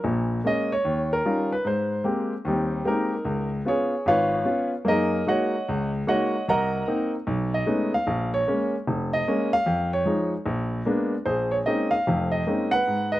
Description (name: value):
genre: solo jazz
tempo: 150 BPM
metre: 4/4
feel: swing 65% on 8ths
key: unclear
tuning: A4 = 441 Hz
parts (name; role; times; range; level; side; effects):
- warm grand piano; solo; 0.0-13.2 s; F1 to Bb5; -22 LUFS; equal; none
room: little or no reverb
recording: recorded outdoors, with no room sound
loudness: -22 LUFS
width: side -15 dB against mid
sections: 0.0-11.3 A section; 11.3-13.2 B section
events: grand piano solo 0.0-11.3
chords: 0.0 Bbm7; 0.8 Eb9; 1.6 Abmaj9; 3.3 Db7; 4.9 Gb69; 6.5 Cm7b5; 7.3 B13; 8.1 Bbm7; 9.7 Fm7; 10.5 Bb7b9; 11.3 Bbm11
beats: | 0.04 0.45 0.85 1.25 | 1.65 2.05 2.45 2.85 | 3.25 3.65 4.05 4.46 | 4.86 5.26 5.66 6.06 | 6.46 6.86 7.26 7.66 | 8.06 8.46 8.86 9.26 | 9.65 10.05 10.45 10.85 | 11.25 11.65 12.05 12.46 | 12.86